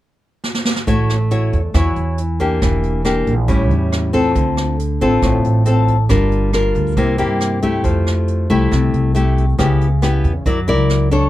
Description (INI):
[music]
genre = bossa nova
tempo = 138 BPM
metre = 4/4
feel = straight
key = unclear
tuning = A4 = 439 Hz
[part]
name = jazz brush drum kit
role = drums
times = 0.4-11.2 s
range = hi-hat, kick drum, rim click, snare drum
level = -23 LUFS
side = right 1 dB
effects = none
[part]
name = nylon-string guitar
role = accompaniment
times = 0.9-11.3 s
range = A2 to D5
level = -17 LUFS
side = left 2 dB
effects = none
[part]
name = upright bass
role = bass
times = 0.9-11.3 s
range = E1 to G2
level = -17 LUFS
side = right 1 dB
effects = none
[sound]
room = little or no reverb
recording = none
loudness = -14 LUFS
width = side -14 dB against mid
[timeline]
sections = 0.9-11.3 A section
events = drum fill 0.4-0.9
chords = 0.0 N.C.; 0.9 A6; 2.6 Em7b5; 3.5 A7; 4.4 Dm7; 6.1 Gm7; 7.0 C7; 7.8 Fmaj9; 9.6 C#m7b5; 10.5 F#7b13